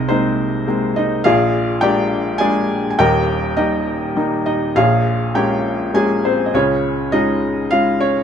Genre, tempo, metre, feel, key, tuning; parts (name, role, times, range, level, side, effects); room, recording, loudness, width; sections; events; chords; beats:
classical, lyrical solo piano; 103 BPM; 3/4; rubato; A4 = 437 Hz
felt-muted upright piano; solo; 0.0-8.2 s; Eb1 to Ab5; -15 LUFS; equal
little or no reverb; close, detailed microphones; -15 LUFS; side -8 dB against mid
0.0-8.2 A section
0.0 Abadd9/C; 1.3 Bb7; 3.0 Eb; 4.8 Bbm7; 6.5 Db
0.11 0.69 | 1.26 1.83 2.41 | 3.00 3.58 4.17 | 4.76 5.36 5.95 | 6.54 7.13 7.71